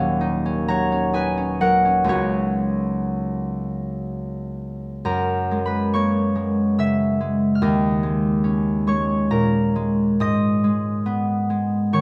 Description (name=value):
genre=classical, solo harp piece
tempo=56-72 BPM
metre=3/4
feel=rubato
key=F# major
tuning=A4 = 440 Hz
part: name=concert harp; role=solo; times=0.0-12.0 s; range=D#1 to E#6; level=-21 LUFS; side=equal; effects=none
room=light reverb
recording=close, detailed microphones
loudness=-21 LUFS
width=mono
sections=0.0-5.0 A section; 5.0-12.0 B section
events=none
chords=0.0 D#m9; 2.1 C#9sus4; 5.0 F#add9; 7.6 D#7(no3); 10.2 G#m